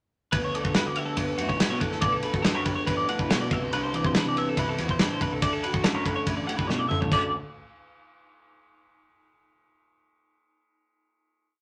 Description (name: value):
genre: math rock and midwest emo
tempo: 141 BPM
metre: 4/4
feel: straight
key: D major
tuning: A4 = 438 Hz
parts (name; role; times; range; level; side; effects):
- electric guitar through a small old amp; accompaniment; 0.3-7.3 s; D2 to A4; -33 LUFS; equal; none
- twelve-string electric guitar; arpeggios; 0.3-7.3 s; F#4 to F#5; -32 LUFS; equal; tremolo
- growling fingered electric bass; bass; 0.3-7.3 s; A1 to D3; -37 LUFS; equal; overdrive
- loose indie drum kit; drums; 0.3-7.2 s; crash cymbal, kick drum, ride cymbal, snare drum, toms; -29 LUFS; equal; none
room: moderate club reverb, RT60 0.8 s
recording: none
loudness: -26 LUFS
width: mono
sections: 0.3-7.1 A section; 7.1-8.8 final chord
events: drum fill 6.7-7.1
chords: 0.3 D69; 3.5 Cmaj9; 5.4 Dmaj7; 7.1 N.C.